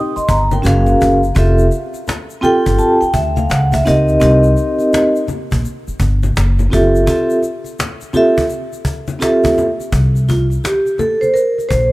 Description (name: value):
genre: hip hop, jazz-hop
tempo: 84 BPM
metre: 4/4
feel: swing 64% on 16ths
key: F major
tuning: A4 = 440 Hz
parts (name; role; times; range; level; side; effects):
- vibraphone with soft mallets; accompaniment; 0.0-11.9 s; C4 to Eb6; -14 LUFS; right 1 dB; none
- upright bass; bass; 0.2-11.9 s; F1 to D2; -14 LUFS; equal; none
- cajon; drums; 0.2-11.9 s; none; -21 LUFS; equal; none
- tube shaker and congas; percussion; 0.2-11.9 s; none; -26 LUFS; left 4 dB; none
room: light reverb, studio reverb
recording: dark, warm production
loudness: -12 LUFS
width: side -19 dB against mid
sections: 0.0-9.9 A section; 9.9-11.9 B section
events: vibraphone fill 2.1-4.2; break 7.1-9.9; vibraphone solo 9.9-11.9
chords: 0.0 Cm7; 0.6 Gbmaj9; 1.4 Fmaj9; 3.5 Eb13b9/Db; 4.2 Cm7; 6.4 F#m7b5; 7.1 Fmaj9; 9.9 Gmadd9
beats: 0.65 | 1.36 2.08 2.79 3.50 | 4.22 4.93 5.65 6.36 | 7.08 7.79 8.51 9.22 | 9.93 10.65 11.36